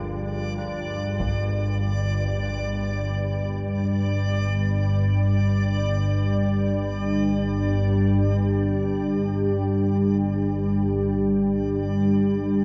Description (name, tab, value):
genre	dark ambient drone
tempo	free time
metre	none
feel	none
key	unclear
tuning	A4 = 444 Hz
part	dark analog pad	sustained chords	0.0-12.6 s	G3 to G4	-28 LUFS	equal	chorus
part	old church bells	arpeggios	0.0-6.1 s	D3 to F4	-42 LUFS	equal	delay
part	organ-like drone	drone	0.0-12.6 s	G1 to G2	-26 LUFS	equal	ensemble chorus, built-in reverb
part	backwards swelling texture	texture	0.0-12.6 s	D5	-36 LUFS	equal	built-in reverb
part	taiko ensemble	percussion	1.2-1.4 s	none	-37 LUFS	equal	none
room	wet huge ambient reverb, RT60 8.3 s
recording	worn, warbling old tape, cassette tape, warbly pitch drift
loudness	-23 LUFS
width	mono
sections	0.0-12.6 A section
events	fade-in on analog synth pad 0.0-12.6; fade-out on synth texture 0.0-12.6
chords	0.0 G5